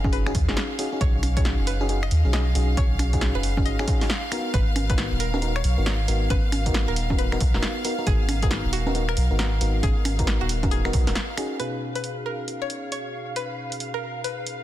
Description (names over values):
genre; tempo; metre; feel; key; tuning
UK garage, two-step garage; 136 BPM; 4/4; swing 63% on 16ths; unclear; A4 = 442 Hz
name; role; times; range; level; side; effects
bright studio violin section; sustained chords; 0.0-14.6 s; E#5; -35 LUFS; right 1 dB; sidechain pumping, low-pass filter
FM electric piano; stabs; 0.0-14.6 s; B2 to A#4; -30 LUFS; left 1 dB; chorus, low-pass filter, dub echo
soft dub sub bass; bass; 0.0-11.1 s; D#1 to D#2; -24 LUFS; equal; sidechain pumping
electronic kick drum; drums; 0.0-11.0 s; none; -24 LUFS; equal; none
punchy analog drum machine; drums; 0.0-14.6 s; congas, finger snaps, hi-hat, snare drum; -29 LUFS; right 1 dB; none
string-like resonator pluck; melody; 0.1-14.4 s; F#4 to D#5; -33 LUFS; left 1 dB; chorus, ping-pong delay
room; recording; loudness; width
little or no reverb; dense, heavily limited modern master; -21 LUFS; side -13 dB against mid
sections
0.0-11.6 A section; 11.6-14.6 B section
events
filter sweep on FM electric piano 11.6-14.6; filter sweep on violin section 11.6-14.6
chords
0.0 B69; 4.3 G#m7; 11.6 B69